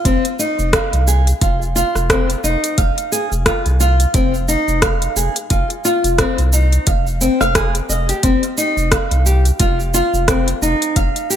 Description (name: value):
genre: organic downtempo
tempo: 88 BPM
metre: 4/4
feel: swing 58% on 16ths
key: F minor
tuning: A4 = 436 Hz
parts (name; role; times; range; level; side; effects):
- flamenco guitar; arpeggios; 0.0-11.4 s; C4 to F5; -18 LUFS; left 1 dB; ping-pong delay
- round analog bass; bass; 0.1-11.1 s; F1 to C2; -17 LUFS; equal; none
- afro-pop drum kit; drums; 0.1-11.4 s; hi-hat, rim click, shaker; -19 LUFS; right 1 dB; none
- electronic kick drum; drums; 0.1-11.1 s; none; -19 LUFS; equal; overdrive
room: light reverb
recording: bright 1980s-style digital production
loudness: -14 LUFS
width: side -10 dB against mid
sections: 0.0-11.4 A section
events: none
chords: 0.0 F5; 8.2 Cm/F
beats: | 0.05 0.73 1.42 2.10 | 2.78 3.46 4.14 4.82 | 5.51 6.19 6.87 7.55 | 8.23 8.91 9.60 10.28 | 10.96